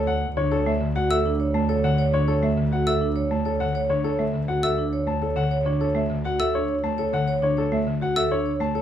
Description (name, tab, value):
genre	classical, minimalist pattern music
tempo	102 BPM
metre	3/4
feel	straight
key	D major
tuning	A4 = 439 Hz
part	warm grand piano	melody	0.0-8.8 s	A4 to A5	-28 LUFS	left 6 dB	none
part	vibraphone with medium hard mallets	arpeggios	0.0-8.8 s	D4 to C#5	-26 LUFS	right 2 dB	none
part	rich studio double bass section	bass	0.0-8.8 s	D2	-28 LUFS	right 2 dB	none
part	buzzing marimba with medium mallets	accompaniment	0.4-8.8 s	D3 to A3	-27 LUFS	equal	none
part	xylophone with plastic mallets	arpeggios	1.1-8.4 s	E6	-29 LUFS	left 2 dB	none
room	moderate large studio reverb, RT60 0.8 s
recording	dark, warm production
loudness	-21 LUFS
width	side -10 dB against mid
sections	0.0-8.8 A section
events	none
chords	0.0 Dmaj7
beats	| 0.07 0.66 1.25 | 1.84 2.43 3.02 | 3.60 4.19 4.78 | 5.37 5.96 6.54 | 7.13 7.72 8.31